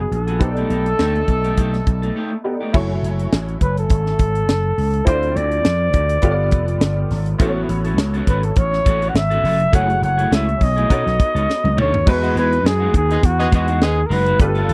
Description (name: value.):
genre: polished 1980s jazz-funk pop.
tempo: 103 BPM.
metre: 4/4.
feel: swing 54% on 16ths.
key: E major.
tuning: A4 = 440 Hz.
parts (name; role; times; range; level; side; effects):
breathy flugelhorn; melody; 0.0-14.7 s; F#4 to F#5; -23 LUFS; equal; slapback echo.
clear horn section; second line; 0.0-2.4, 13.1-14.0 s; G#3 to A4; -29 LUFS; equal; none.
clear grand piano; accompaniment; 0.0-14.7 s; G#3 to G#5; -29 LUFS; equal; ensemble chorus.
electric guitar at the edge of break-up; riff; 0.0-2.7, 7.4-14.7 s; G#3 to B4; -29 LUFS; equal; subtle chorus.
vintage slap bass; bass; 0.0-14.7 s; F1 to B2; -22 LUFS; equal; none.
tight funk drum kit; drums; 0.1-14.7 s; crash cymbal, hi-hat, kick drum, snare drum, toms; -19 LUFS; equal; none.
room: little or no reverb.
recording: dry, close 1970s-style studio recording.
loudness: -18 LUFS.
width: mono.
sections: 0.0-2.7 A section; 2.7-12.1 B section; 12.1-14.7 C section.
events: break 2.2-2.7; drum fill 11.5-12.1.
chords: 0.4 B7alt; 2.7 F#m9; 5.1 Dm7; 6.2 G9; 7.4 A6; 9.7 F#m9; 10.9 B9; 12.1 Emaj9.